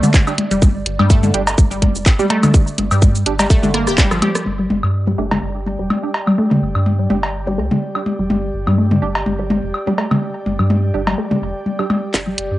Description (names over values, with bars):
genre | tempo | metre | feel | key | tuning
minimal techno | 125 BPM | 4/4 | swing 55% on 16ths | unclear | A4 = 441 Hz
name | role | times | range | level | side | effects
resonant blip pluck | riff | 0.0-12.3 s | D3 to G4 | -20 LUFS | left 1 dB | phaser, sidechain pumping, cassette tape, analog delay
garage drum kit | drums | 0.0-4.4, 12.1-12.5 s | handclaps, hi-hat, rim click, shaker | -21 LUFS | equal | high-pass filter on perc, low-pass filter on perc, cassette tape, high-pass filter on hats, low-pass filter on hats, high-pass filter on snare, low-pass filter on snare, high-pass filter on room, low-pass filter on room
electronic toms, woodblock and cowbell | percussion | 0.0-12.0 s | none | -20 LUFS | left 1 dB | cassette tape, tape echo
pulsing gated texture | texture | 0.0-4.5, 12.3-12.6 s | D5 | -33 LUFS | right 7 dB | none
electronic kick drum | drums | 0.1-4.1, 12.1-12.2 s | none | -12 LUFS | equal | high-pass filter on kick, cassette tape, high-pass filter on room
filtered dub chord stab | stabs | 0.3-11.9 s | G3 to G4 | -26 LUFS | right 7 dB | analog chorus, cassette tape, tape echo
rubbery square bass | bass | 0.5-12.6 s | D1 to G2 | -20 LUFS | equal | sidechain pumping
airy breathy pad | texture | 4.7-12.6 s | G4 to G5 | -28 LUFS | right 1 dB | chorus, sidechain pumping, cassette tape
room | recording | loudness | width
light reverb | home recording on cassette, nothing above 10.9 kHz | -14 LUFS | side -16 dB against mid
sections
0.0-4.5 A section; 4.5-12.1 B section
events
drop 0.0-4.5; drum fill 3.7-4.5, 12.1-12.6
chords
0.0 G5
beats
0.14 | 0.62 1.10 1.58 2.06 | 2.54 3.02 3.50 3.98 | 4.46 4.94 5.42 5.90 | 6.38 6.86 7.34 7.82 | 8.30 8.78 9.26 9.74 | 10.22 10.70 11.18 11.66 | 12.14